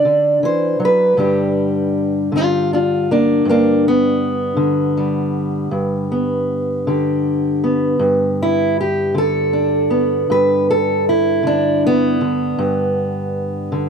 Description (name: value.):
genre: acoustic country blues, solo or duo.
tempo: 53 BPM (dotted quarters).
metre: 12/8.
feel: straight.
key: G major.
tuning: A4 = 440 Hz.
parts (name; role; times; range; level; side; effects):
fingerpicked steel-string acoustic guitar; solo; 0.0-13.9 s; G2 to D5; -14 LUFS; equal; none.
room: little or no reverb.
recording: dry, close 1970s-style studio recording.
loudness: -14 LUFS.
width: side -6 dB against mid.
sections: 0.0-1.2 A section; 1.2-13.9 A section.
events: none.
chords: 0.0 D; 1.2 G.